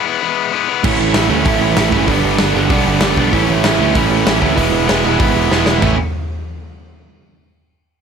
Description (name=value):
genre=punk rock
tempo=192 BPM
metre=4/4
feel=straight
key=A major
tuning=A4 = 438 Hz
part: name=overdriven electric guitar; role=riff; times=0.0-6.0 s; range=G2 to E4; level=-17 LUFS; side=left 12 dB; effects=none
part: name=distorted electric guitar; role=riff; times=0.8-6.0 s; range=G2 to E4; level=-16 LUFS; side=right 13 dB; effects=distortion
part: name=growling picked electric bass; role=bass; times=0.8-6.0 s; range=E1 to D2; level=-19 LUFS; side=equal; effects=overdrive
part: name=big rock drum kit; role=drums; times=0.8-5.9 s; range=china cymbal, crash cymbal, hi-hat, kick drum, snare drum, toms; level=-18 LUFS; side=equal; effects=none
room=little or no reverb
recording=none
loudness=-12 LUFS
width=side -6 dB against mid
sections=0.0-5.8 A section; 5.8-7.1 B section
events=drum fill 5.5-5.8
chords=0.0 E; 0.8 A; 2.1 G; 3.3 A; 4.6 E; 5.8 A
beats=0.22 0.53 | 0.84 1.15 1.47 1.77 | 2.09 2.40 2.71 3.02 | 3.33 3.65 3.96 4.27 | 4.58 4.89 5.21 5.52 | 5.83